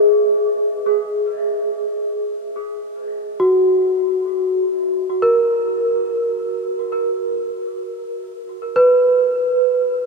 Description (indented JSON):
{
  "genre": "ambient",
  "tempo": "free time",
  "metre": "none",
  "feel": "none",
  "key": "unclear",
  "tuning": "A4 = 442 Hz",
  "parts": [
    { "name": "large celesta", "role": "solo", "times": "0.0-10.1 s", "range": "F#4 to B4", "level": "-16 LUFS", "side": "equal", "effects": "tape echo" }
  ],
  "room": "wet huge ambient reverb, RT60 8.1 s",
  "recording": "none",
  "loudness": "-16 LUFS",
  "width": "side -3 dB against mid",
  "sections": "0.0-10.1 A section",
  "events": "none",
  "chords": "0.0 N.C.; 3.0 F#; 7.6 N.C.",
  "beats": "free time"
}